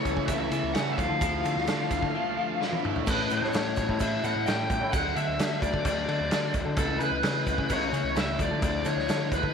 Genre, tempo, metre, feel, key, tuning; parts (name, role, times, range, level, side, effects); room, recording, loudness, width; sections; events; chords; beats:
indie rock; 130 BPM; 4/4; straight; A4 = 440 Hz
dark smooth lead guitar; melody; 0.0-9.5 s; A4 to G5; -30 LUFS; left 1 dB; overdrive, slapback echo
crunchy overdriven guitar; riff; 0.0-3.1 s; E3 to E4; -33 LUFS; right 14 dB; lush chorus
twelve-string electric guitar; riff; 0.0-9.5 s; A2 to E4; -33 LUFS; left 14 dB; lush chorus
growling picked electric bass; bass; 0.1-9.5 s; C#2 to D3; -32 LUFS; right 1 dB; overdrive
raw garage drum kit; drums; 0.1-9.5 s; crash cymbal, kick drum, ride cymbal, snare drum, toms; -30 LUFS; equal
tube shaker; percussion; 0.1-9.4 s; -48 LUFS; right 18 dB
light reverb; 1960s-style stereo with parts hard left and right; -25 LUFS; side -6 dB against mid
0.0-3.1 A section; 3.1-9.5 A section
drum fill 2.6-3.1
0.0 A/C#; 1.0 Dmadd9; 3.1 A; 4.9 D; 6.8 A/C#; 8.4 Dmadd9
0.29 0.76 | 1.22 1.69 2.15 2.61 | 3.08 3.54 4.01 4.47 | 4.93 5.39 5.86 6.32 | 6.78 7.25 7.71 8.17 | 8.63 9.10